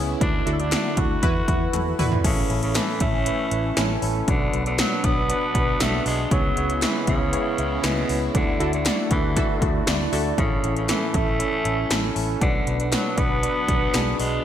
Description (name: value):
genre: 1980s-style pop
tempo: 118 BPM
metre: 4/4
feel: straight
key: A major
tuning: A4 = 440 Hz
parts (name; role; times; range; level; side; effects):
- raspy tenor saxophone; melody; 0.0-14.4 s; B2 to F#4; -27 LUFS; equal; none
- tine electric piano; accompaniment; 0.0-14.4 s; A2 to E5; -26 LUFS; right 1 dB; medium stereo tremolo
- sweeping resonant pad; sustained chords; 0.0-14.4 s; C#3 to B4; -32 LUFS; left 1 dB; chorus
- vintage muted fingered electric bass; bass; 0.0-14.4 s; A1 to E2; -27 LUFS; equal; none
- 80s electronic pad drums; drums; 0.2-14.3 s; crash cymbal, hi-hat, kick drum, snare drum, tambourine, toms; -24 LUFS; equal; gated reverb on snare and toms, gated reverb
- funky polysynth comp; stabs; 0.5-2.2, 8.6-10.3 s; E4 to B4; -32 LUFS; left 1 dB; chorus, ping-pong delay
- group handclap; percussion; 0.7-14.1 s; none; -39 LUFS; left 7 dB; none
room: moderate lush hall reverb, RT60 1.8 s, digital ambience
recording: bright 1980s-style digital production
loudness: -20 LUFS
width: side -10 dB against mid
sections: 0.0-2.2 A section; 2.2-14.4 A section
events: band accent 0.2-2.2, 8.3-10.4; drum fill 1.7-2.2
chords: 0.2 Dadd9; 1.2 Esus2; 2.2 A; 4.3 Bm; 6.3 C#m7; 8.3 Dadd9; 10.4 A; 12.4 Bm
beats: | 0.21 0.72 1.23 1.74 | 2.25 2.75 3.26 3.77 | 4.28 4.79 5.30 5.80 | 6.31 6.82 7.33 7.84 | 8.35 8.86 9.36 9.87 | 10.38 10.89 11.40 11.91 | 12.41 12.92 13.43 13.94